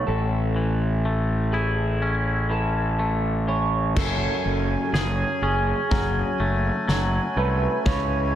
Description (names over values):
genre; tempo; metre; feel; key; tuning
post-rock; 62 BPM; 4/4; straight; F# minor; A4 = 440 Hz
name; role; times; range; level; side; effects
electric guitar through a small old amp; arpeggios; 0.0-8.4 s; G#4 to C#5; -29 LUFS; right 2 dB; lush chorus, analog delay
twangy electric guitar; arpeggios; 0.0-8.4 s; F#2 to G#4; -27 LUFS; left 2 dB; spring reverb, analog delay
fuzz fingered electric bass; bass; 0.0-8.4 s; F#1 to C#2; -24 LUFS; equal; overdrive
hand-pumped harmonium; sustained chords; 4.0-8.4 s; C#3 to G#5; -29 LUFS; right 2 dB; none
loose indie drum kit; drums; 4.0-8.1 s; crash cymbal, kick drum, snare drum; -27 LUFS; equal; none
room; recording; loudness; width
moderate lush hall reverb, RT60 2.2 s; dreamy mix soaked in reverb; -21 LUFS; side -11 dB against mid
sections
0.0-4.0 A section; 4.0-8.4 B section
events
build-up 4.0-8.4; drum fill 4.0-8.4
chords
0.1 A; 4.0 F#madd9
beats
| 0.08 1.05 2.02 3.00 | 3.97 4.95 5.92 6.89 | 7.87